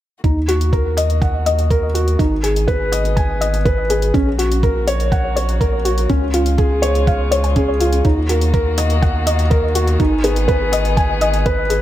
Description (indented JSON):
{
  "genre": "piano and strings electronica",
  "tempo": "123 BPM",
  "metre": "4/4",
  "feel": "straight",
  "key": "Eb minor",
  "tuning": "A4 = 439 Hz",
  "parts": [
    { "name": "muted string quartet", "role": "sustained chords", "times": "0.2-11.8 s", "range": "Db3 to Ab4", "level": "-29 LUFS", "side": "left 3 dB", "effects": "sidechain pumping" },
    { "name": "soft round pluck", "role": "arpeggios", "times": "0.2-11.8 s", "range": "Db4 to Ab5", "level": "-24 LUFS", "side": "equal", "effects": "chorus, sidechain pumping, digital delay" },
    { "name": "felt-muted upright piano", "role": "riff", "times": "0.2-11.8 s", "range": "Db4 to Ab5", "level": "-19 LUFS", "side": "left 1 dB", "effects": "digital delay" },
    { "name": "round analog bass", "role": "bass", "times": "0.2-11.8 s", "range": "Ab1 to Eb2", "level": "-18 LUFS", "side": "equal", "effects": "sidechain pumping" },
    { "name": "electronic hi-hat", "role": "drums", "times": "0.2-11.8 s", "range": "none", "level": "-28 LUFS", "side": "left 3 dB", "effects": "none" },
    { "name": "electronic kick drum", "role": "drums", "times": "0.2-11.6 s", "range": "none", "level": "-18 LUFS", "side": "equal", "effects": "none" }
  ],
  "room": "light reverb",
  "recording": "none",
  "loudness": "-14 LUFS",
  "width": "side -13 dB against mid",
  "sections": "0.2-11.8 A section",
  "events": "fade-in on string quartet 0.2-11.8",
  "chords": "0.2 Ebm; 2.2 Abm; 4.1 Gb/Bb; 6.1 Db; 8.0 Ebm; 10.0 Abm"
}